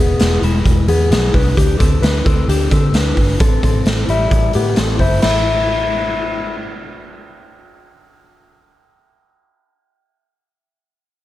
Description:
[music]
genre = jangly indie pop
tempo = 131 BPM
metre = 4/4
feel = straight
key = A minor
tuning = A4 = 436 Hz
[part]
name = direct-recorded clean electric guitar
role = arpeggios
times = 0.0-6.6 s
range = G3 to C5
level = -18 LUFS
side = left 4 dB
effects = analog delay
[part]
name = vintage muted fingered electric bass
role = bass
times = 0.0-9.2 s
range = E1 to D3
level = -17 LUFS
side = equal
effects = none
[part]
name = raw garage drum kit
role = drums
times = 0.2-5.3 s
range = crash cymbal, hi-hat, kick drum, snare drum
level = -16 LUFS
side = equal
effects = none
[sound]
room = light reverb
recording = echo-heavy mix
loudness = -12 LUFS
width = side -14 dB against mid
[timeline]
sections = 0.0-5.2 A section; 5.2-8.9 B section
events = none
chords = 0.0 E; 1.6 D5; 3.4 Am; 5.2 A5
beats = 0.19 0.65 1.11 | 1.56 2.02 2.48 2.94 | 3.39 3.85 4.31 4.76 | 5.22 5.68 6.13 6.59 | 7.05 7.50 7.96 8.41

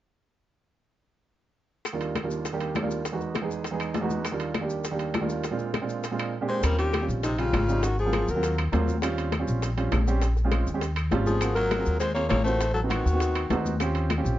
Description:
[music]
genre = Afro-Cuban jazz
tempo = 201 BPM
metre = 4/4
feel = straight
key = Eb major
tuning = A4 = 439 Hz
[part]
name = warm grand piano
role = accompaniment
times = 1.9-14.4 s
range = Eb2 to G#4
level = -29 LUFS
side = right 4 dB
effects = none
[part]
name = bongos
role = percussion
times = 1.9-14.3 s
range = none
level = -36 LUFS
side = left 7 dB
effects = none
[part]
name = claves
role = percussion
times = 1.9-14.3 s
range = none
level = -39 LUFS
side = left 5 dB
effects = none
[part]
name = congas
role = percussion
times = 1.9-14.4 s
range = none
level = -34 LUFS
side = left 3 dB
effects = none
[part]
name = maracas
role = percussion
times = 1.9-14.4 s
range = none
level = -45 LUFS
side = left 4 dB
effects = none
[part]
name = timbales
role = percussion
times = 1.9-14.2 s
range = none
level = -35 LUFS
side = right 4 dB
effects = none
[part]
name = mellow alto saxophone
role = melody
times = 6.5-8.6, 11.3-13.6 s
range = Eb4 to Db5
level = -28 LUFS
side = left 1 dB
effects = plate reverb
[part]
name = growling baritone saxophone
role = second line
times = 6.5-8.6, 11.3-13.6 s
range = C3 to Bb3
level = -33 LUFS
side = left 3 dB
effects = none
[part]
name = upright bass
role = bass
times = 6.6-14.4 s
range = Ab1 to Eb2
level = -26 LUFS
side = equal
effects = none
[sound]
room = light reverb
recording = dark, warm production, nothing above 7.6 kHz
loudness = -24 LUFS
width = side -13 dB against mid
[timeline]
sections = 1.9-6.6 A section; 6.6-14.4 B section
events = none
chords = 1.9 Ebmaj9; 3.1 Emaj9; 4.2 Ebmaj9; 5.4 Bb9; 6.6 Eb13; 7.8 Ab13; 9.0 Eb13; 10.2 Bbm7; 10.8 Eb13; 11.4 Ab13; 12.6 Adim7; 13.8 Eb13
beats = | 1.86 2.16 2.46 2.75 | 3.05 3.35 3.65 3.95 | 4.25 4.55 4.85 5.15 | 5.45 5.75 6.04 6.34 | 6.64 6.94 7.24 7.54 | 7.84 8.13 8.43 8.73 | 9.03 9.33 9.63 9.93 | 10.22 10.52 10.82 11.12 | 11.42 11.72 12.01 12.31 | 12.61 12.91 13.21 13.51 | 13.80 14.10

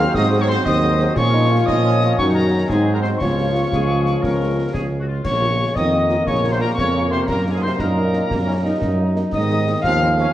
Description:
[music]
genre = military-style march for wind band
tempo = 118 BPM (dotted quarters)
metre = 6/8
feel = straight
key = unclear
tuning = A4 = 441 Hz
[part]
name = mellow trumpet section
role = melody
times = 0.0-10.3 s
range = Ab4 to F5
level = -25 LUFS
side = left 1 dB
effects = none
[part]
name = bright piccolo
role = second line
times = 0.0-10.3 s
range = Ab5 to F6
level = -26 LUFS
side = left 2 dB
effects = none
[part]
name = bright woodwind section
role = second line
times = 0.0-10.3 s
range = Eb4 to F5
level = -27 LUFS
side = left 2 dB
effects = none
[part]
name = warm euphonium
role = second line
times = 0.0-10.3 s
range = Ab2 to Gb4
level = -26 LUFS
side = right 1 dB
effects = none
[part]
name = mellow French horn section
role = accompaniment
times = 0.0-10.2 s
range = F3 to Ab4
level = -26 LUFS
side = left 3 dB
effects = none
[part]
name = bright trombone section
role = sustained chords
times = 0.0-10.3 s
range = Eb3 to Eb4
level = -27 LUFS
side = right 1 dB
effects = none
[part]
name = mellow tuba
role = bass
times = 0.0-10.3 s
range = Bb1 to Bb2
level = -20 LUFS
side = right 1 dB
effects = none
[part]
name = concert snare drum, concert bass drum and clash cymbals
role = drums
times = 0.1-10.3 s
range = none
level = -28 LUFS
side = left 1 dB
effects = none
[sound]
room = wet recital hall reverb, RT60 1.5 s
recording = worn, warbling old tape, cassette tape, warbly pitch drift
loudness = -16 LUFS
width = side -13 dB against mid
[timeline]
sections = 0.0-5.3 A section; 5.3-10.3 A section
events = none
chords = 0.0 Ab7; 1.2 Bbm; 2.2 Ebm7/Gb; 2.7 Ab7; 3.2 Db; 5.3 Bbm; 7.3 Ebm/Gb; 9.3 Ab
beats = | 0.15 0.66 | 1.17 1.68 | 2.19 2.70 | 3.21 3.72 | 4.23 4.74 | 5.25 5.76 | 6.27 6.78 | 7.29 7.80 | 8.31 8.82 | 9.33 9.84

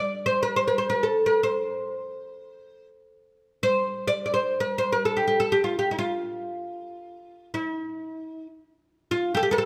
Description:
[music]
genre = Arabic maqam ensemble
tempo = free time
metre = none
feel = none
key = C maqam rast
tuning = A4 = 440 Hz
[part]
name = oud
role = solo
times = 0.0-9.6 s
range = E4-50c to D5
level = -26 LUFS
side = equal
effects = none
[sound]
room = moderate recital hall reverb, RT60 1.6 s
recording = none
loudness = -26 LUFS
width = mono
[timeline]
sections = 0.0-9.7 A section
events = none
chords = none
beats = free time

